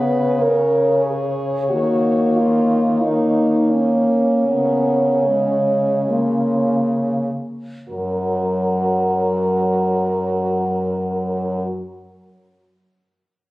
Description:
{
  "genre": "classical, lyrical piece for horn quartet",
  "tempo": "32-47 BPM",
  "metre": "4/4",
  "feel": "rubato",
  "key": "F# major",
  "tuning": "A4 = 440 Hz",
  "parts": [
    { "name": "warm French horn", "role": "melody", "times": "0.0-11.7 s", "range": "E#4 to C#5", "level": "-24 LUFS", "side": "left 1 dB", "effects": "none" },
    { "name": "warm French horn", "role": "second line", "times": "0.0-11.7 s", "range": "C#4 to B4", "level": "-21 LUFS", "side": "right 1 dB", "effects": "none" },
    { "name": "mellow French horn", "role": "accompaniment", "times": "0.0-11.7 s", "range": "F#3 to C#4", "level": "-21 LUFS", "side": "left 1 dB", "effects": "none" },
    { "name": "clear French horn", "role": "bass", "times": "0.0-11.7 s", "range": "F#2 to D#3", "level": "-24 LUFS", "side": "equal", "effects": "none" }
  ],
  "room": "moderate recital hall reverb, RT60 1.8 s",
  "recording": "recorded on a phone in the room, club reverb",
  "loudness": "-16 LUFS",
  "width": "side -18 dB against mid",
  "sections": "0.0-7.9 A section; 7.9-13.5 B section",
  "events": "slowing down 0.0-7.9",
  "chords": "0.0 G#madd11/C#; 1.7 D#5; 4.5 C#5; 7.9 F#"
}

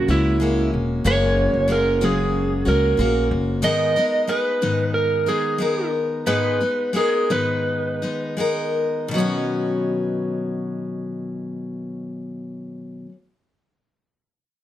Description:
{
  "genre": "acoustic pop",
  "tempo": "79-93 BPM",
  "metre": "4/4",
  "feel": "straight",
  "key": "B major",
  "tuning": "A4 = 440 Hz",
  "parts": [
    { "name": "electric slide guitar", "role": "melody", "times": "0.0-8.3 s", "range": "E4 to D#5", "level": "-21 LUFS", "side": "right 2 dB", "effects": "plate reverb" },
    { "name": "picked steel-string acoustic guitar", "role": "accompaniment", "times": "0.0-13.2 s", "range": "F#2 to A#4", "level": "-22 LUFS", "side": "left 2 dB", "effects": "none" },
    { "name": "upright bass", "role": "bass", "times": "0.0-3.6 s", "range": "E1 to C#2", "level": "-22 LUFS", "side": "equal", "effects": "none" }
  ],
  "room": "moderate studio reverb, RT60 0.6 s",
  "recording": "none",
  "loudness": "-19 LUFS",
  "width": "side -12 dB against mid",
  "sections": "0.0-9.1 A section; 9.1-12.1 B section",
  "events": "slowing down 3.6-9.1",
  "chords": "0.0 F#add9; 3.6 G#madd9; 9.1 Badd9"
}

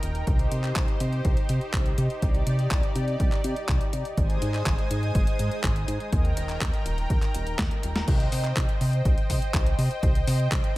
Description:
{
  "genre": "italo disco",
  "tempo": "123 BPM",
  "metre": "4/4",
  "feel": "straight",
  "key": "C minor",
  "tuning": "A4 = 440 Hz",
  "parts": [
    { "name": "lush unison pad", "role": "sustained chords", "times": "0.0-10.8 s", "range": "Eb3 to Eb6", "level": "-32 LUFS", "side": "equal", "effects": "chorus" },
    { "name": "chorused synth bass", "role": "bass", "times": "0.0-10.6 s", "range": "Eb1 to C3", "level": "-27 LUFS", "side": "equal", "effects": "tube saturation" },
    { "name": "clean 12-bit digital drum machine", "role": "drums", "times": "0.0-10.7 s", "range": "crash cymbal, handclaps, hi-hat, snare drum", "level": "-33 LUFS", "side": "equal", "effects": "overdrive" },
    { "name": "electronic kick drum", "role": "drums", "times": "0.3-10.6 s", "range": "none", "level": "-25 LUFS", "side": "equal", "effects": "none" }
  ],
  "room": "digital ambience",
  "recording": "none",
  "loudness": "-22 LUFS",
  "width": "side -18 dB against mid",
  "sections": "0.0-8.1 A section; 8.1-10.8 B section",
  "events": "drum fill 7.6-8.1",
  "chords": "0.3 Cm; 4.2 Ab; 6.1 Eb; 8.1 Cm"
}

